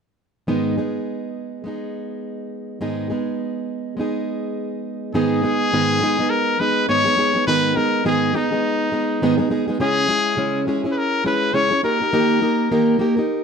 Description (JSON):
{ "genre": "acoustic pop", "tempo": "103 BPM", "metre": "4/4", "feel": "swing 60% on 16ths", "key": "G# minor", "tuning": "A4 = 440 Hz", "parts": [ { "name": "fingerpicked plugged-in steel-string acoustic guitar", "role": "accompaniment", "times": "0.5-13.4 s", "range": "G#2 to A#4", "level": "-20 LUFS", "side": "right 1 dB", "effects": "none" }, { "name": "bright trumpet", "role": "melody", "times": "5.1-13.0 s", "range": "D#4 to C#5", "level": "-20 LUFS", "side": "left 2 dB", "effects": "none" } ], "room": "moderate studio reverb, RT60 0.8 s", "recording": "band playing live in one room", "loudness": "-18 LUFS", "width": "side -6 dB against mid", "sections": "0.5-5.1 A section; 5.1-13.4 B section", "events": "none", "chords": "0.5 G#m; 9.8 C#m; 11.8 D#" }